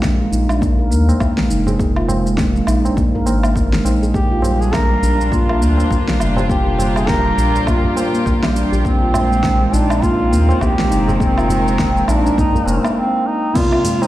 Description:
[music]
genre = organic downtempo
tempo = 102 BPM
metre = 4/4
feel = swing 59% on 16ths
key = Bb mixolydian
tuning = A4 = 440 Hz
[part]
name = handpan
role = arpeggios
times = 0.0-14.1 s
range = G3 to Bb4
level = -19 LUFS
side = equal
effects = ping-pong delay
[part]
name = round analog bass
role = bass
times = 0.0-12.8 s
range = F1 to Eb2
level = -18 LUFS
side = equal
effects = sidechain pumping
[part]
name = deep house drum kit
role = drums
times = 0.0-14.1 s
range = crash cymbal, hi-hat, shaker, snare drum, woodblock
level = -25 LUFS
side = equal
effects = overdrive, studio reverb
[part]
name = electronic kick drum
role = drums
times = 0.0-13.7 s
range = none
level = -21 LUFS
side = equal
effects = overdrive, studio reverb
[part]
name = tabla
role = percussion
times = 1.1-14.1 s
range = none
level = -26 LUFS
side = right 2 dB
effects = none
[part]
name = warm duduk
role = melody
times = 4.1-14.1 s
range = C4 to Bb4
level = -20 LUFS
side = equal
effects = tape echo
[part]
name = warm studio string section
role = sustained chords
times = 4.1-13.0 s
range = Bb2 to Bb4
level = -24 LUFS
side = equal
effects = sidechain pumping
[part]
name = felt-muted upright piano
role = accompaniment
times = 13.5-14.1 s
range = C3 to D5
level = -21 LUFS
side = left 1 dB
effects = sidechain pumping
[sound]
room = light reverb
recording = played on a big sound system in a bare room, large studio reverb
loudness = -13 LUFS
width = side -15 dB against mid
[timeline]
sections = 0.0-13.6 A section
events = break 13.0-13.6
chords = 0.0 Bb7sus4; 4.1 Gm7; 8.9 Bb9sus4; 13.6 Bb7

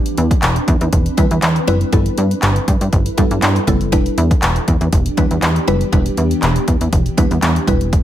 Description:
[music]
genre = dance-pop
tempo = 120 BPM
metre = 4/4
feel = straight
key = E minor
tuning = A4 = 440 Hz
[part]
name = mallet-like synth pluck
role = accompaniment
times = 0.0-8.0 s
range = G3 to B4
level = -20 LUFS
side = equal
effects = chorus, phaser, sidechain pumping
[part]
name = ethereal airy pad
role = sustained chords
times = 0.0-8.0 s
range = E3 to B4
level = -24 LUFS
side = equal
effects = ensemble chorus, built-in reverb, sidechain pumping
[part]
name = deep house drum kit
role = drums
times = 0.1-8.0 s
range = handclaps, hi-hat, kick drum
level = -16 LUFS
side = equal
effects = none
[part]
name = plucky analog bass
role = bass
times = 0.2-8.0 s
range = E1 to G2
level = -17 LUFS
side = equal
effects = sidechain pumping
[sound]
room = little or no reverb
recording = none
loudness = -13 LUFS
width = side -12 dB against mid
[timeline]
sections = 0.0-8.0 A section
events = none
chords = 0.0 Cmaj7/E; 1.9 G69; 3.9 Em7

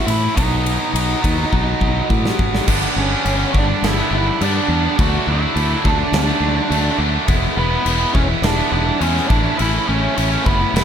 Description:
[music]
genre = quiet-loud alternative rock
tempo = 104 BPM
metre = 4/4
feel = straight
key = unclear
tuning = A4 = 440 Hz
[part]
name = octave-fuzz lead guitar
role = melody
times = 0.0-10.8 s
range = B3 to F#5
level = -22 LUFS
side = right 2 dB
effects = distortion
[part]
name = biting overdriven guitar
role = riff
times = 0.0-10.8 s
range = G2 to E4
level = -22 LUFS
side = right 13 dB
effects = none
[part]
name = tight distorted guitar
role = riff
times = 0.0-10.8 s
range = G2 to E4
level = -24 LUFS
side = left 14 dB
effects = distortion
[part]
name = modern bright fingered electric bass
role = bass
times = 0.1-10.8 s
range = E1 to A2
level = -20 LUFS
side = left 1 dB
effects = none
[part]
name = big rock drum kit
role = drums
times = 0.1-10.8 s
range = crash cymbal, kick drum, ride cymbal, snare drum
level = -21 LUFS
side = left 1 dB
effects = none
[sound]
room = light reverb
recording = none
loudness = -15 LUFS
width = side -8 dB against mid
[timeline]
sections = 0.0-2.7 A section; 2.7-10.8 B section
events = drum fill 1.5-2.7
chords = 0.4 B; 2.7 G; 5.0 D; 7.3 E; 9.3 A

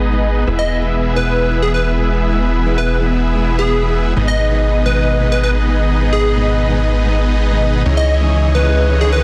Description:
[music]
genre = EDM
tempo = 130 BPM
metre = 4/4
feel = straight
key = G# minor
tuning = A4 = 440 Hz
[part]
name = lush unison pad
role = sustained chords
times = 0.0-9.2 s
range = B2 to D#5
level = -27 LUFS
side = equal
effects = chorus, phaser
[part]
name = dense compressed supersaw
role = riff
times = 0.0-9.2 s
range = B3 to E5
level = -22 LUFS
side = equal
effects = low-pass filter, dub echo
[part]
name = fat analog bass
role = bass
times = 0.0-9.2 s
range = E1 to C#2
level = -18 LUFS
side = equal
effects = none
[part]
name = fingerpicked old ladder-braced acoustic guitar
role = accompaniment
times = 0.1-9.0 s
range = G#2 to D#5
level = -26 LUFS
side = equal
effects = dub echo
[part]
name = plucky unison lead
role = melody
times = 0.6-9.2 s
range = G#4 to D#5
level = -23 LUFS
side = equal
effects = dub echo
[part]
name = riser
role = sound effects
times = 8.4-9.2 s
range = none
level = -30 LUFS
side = equal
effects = none
[sound]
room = light reverb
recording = dense, heavily limited modern master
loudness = -15 LUFS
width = mono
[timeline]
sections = 0.0-9.2 A section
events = filter sweep on analog synth pad 0.0-9.2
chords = 0.5 E; 4.2 G#m; 7.9 C#madd9

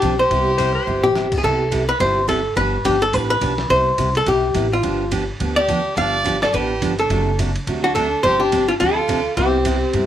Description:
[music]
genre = country, western swing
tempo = 212 BPM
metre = 4/4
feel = swing 59% on 8ths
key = C major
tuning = A4 = 436 Hz
[part]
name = archtop guitar, miked and amplified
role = melody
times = 0.0-10.1 s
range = F4 to F5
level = -18 LUFS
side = left 1 dB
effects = none
[part]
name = bright fiddle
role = second line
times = 0.0-1.3, 5.6-10.1 s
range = C4 to D5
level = -25 LUFS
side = right 4 dB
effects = none
[part]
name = picked steel-string acoustic guitar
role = accompaniment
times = 0.0-10.1 s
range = C3 to G4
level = -24 LUFS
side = right 3 dB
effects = none
[part]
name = upright bass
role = bass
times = 0.0-10.1 s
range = F#1 to G2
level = -24 LUFS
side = equal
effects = none
[part]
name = boom bap sampler-style drum kit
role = drums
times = 0.0-10.0 s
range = crash cymbal, hi-hat, kick drum, ride cymbal, snare drum, toms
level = -28 LUFS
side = equal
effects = none
[part]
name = clean lap steel guitar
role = second line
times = 0.6-1.3 s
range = C5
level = -24 LUFS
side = left 7 dB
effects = none
[sound]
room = light reverb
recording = none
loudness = -16 LUFS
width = side -11 dB against mid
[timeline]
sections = 0.0-1.4 A section; 1.4-10.1 A section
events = drum fill 0.9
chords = 0.3 Cmaj7; 2.6 G7; 3.7 Cmaj7; 4.8 G7; 7.1 D7/F#; 8.2 G7sus4; 9.4 Cmaj7

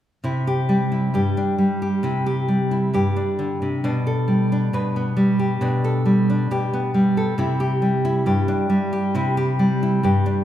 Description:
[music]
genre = folk, solo fingerstyle acoustic guitar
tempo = 67 BPM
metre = 4/4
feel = straight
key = unclear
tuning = A4 = 440 Hz
[part]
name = nylon-string guitar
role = solo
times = 0.2-10.4 s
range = G2 to B4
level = -18 LUFS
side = equal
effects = none
[sound]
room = wet recital hall reverb, RT60 1.4 s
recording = recorded in a church or concert hall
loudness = -18 LUFS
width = side -11 dB against mid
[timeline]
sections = 0.2-10.4 A section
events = none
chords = 0.2 Cadd9; 3.8 Gadd9/B; 7.4 Cadd9

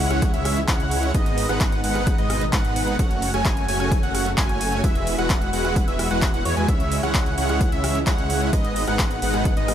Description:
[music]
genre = EDM, festival progressive house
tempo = 130 BPM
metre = 4/4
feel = straight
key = C# minor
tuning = A4 = 440 Hz
[part]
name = lush unison pad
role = sustained chords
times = 0.0-9.7 s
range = B2 to F#4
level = -31 LUFS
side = equal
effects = chorus, phaser, sidechain pumping
[part]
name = wide unison lead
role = arpeggios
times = 0.0-9.7 s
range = C#5 to G#5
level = -27 LUFS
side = equal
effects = sidechain pumping, digital delay
[part]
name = dense compressed supersaw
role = riff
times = 0.0-9.7 s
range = G#3 to G#5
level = -26 LUFS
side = right 1 dB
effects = sidechain pumping, digital delay
[part]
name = detuned saw bass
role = bass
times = 0.0-9.7 s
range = E1 to E2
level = -26 LUFS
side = equal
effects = sidechain pumping
[part]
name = impact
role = sound effects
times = 0.0-1.1 s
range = none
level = barely audible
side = none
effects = none
[part]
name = big-room dance drum kit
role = drums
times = 0.1-9.7 s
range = handclaps, hi-hat, rim click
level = -28 LUFS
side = equal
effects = none
[part]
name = electronic kick drum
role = drums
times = 0.2-9.5 s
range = none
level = -22 LUFS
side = equal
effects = none
[sound]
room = little or no reverb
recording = none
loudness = -19 LUFS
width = side -10 dB against mid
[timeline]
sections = 0.0-9.7 A section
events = impact 0.0-1.1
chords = 0.0 C#m; 1.1 G#m; 3.0 F#m; 4.8 Eadd9; 6.7 C#m; 8.5 G#m

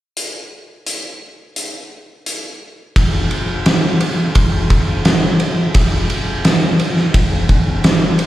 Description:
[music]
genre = rock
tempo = 86 BPM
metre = 4/4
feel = straight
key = none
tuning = none
[part]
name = oversized low-tuned drum kit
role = drums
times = 0.2-8.3 s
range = hi-hat, kick drum, ride cymbal, snare drum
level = -14 LUFS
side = equal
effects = none
[sound]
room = moderate plate reverb, RT60 1.8 s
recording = live gig heard through the venue's PA, recital hall reverb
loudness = -13 LUFS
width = side -14 dB against mid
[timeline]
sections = 0.2-3.0 A section; 3.0-8.3 B section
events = none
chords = none

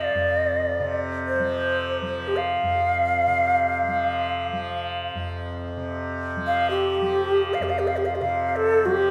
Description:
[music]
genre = world meditative, free-time meditation music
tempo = free time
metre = none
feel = none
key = unclear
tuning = A4 = 441 Hz
[part]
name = Native American-style cedar flute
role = melody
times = 0.0-9.1 s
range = G4 to F5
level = -24 LUFS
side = equal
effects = plate reverb, diffuse ambient delay
[part]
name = tanpura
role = drone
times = 0.0-9.1 s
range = F2 to F3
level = -31 LUFS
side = equal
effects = none
[sound]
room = wet small room reverb, RT60 0.6 s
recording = none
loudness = -24 LUFS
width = mono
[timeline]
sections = 0.0-9.1 A section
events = none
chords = none

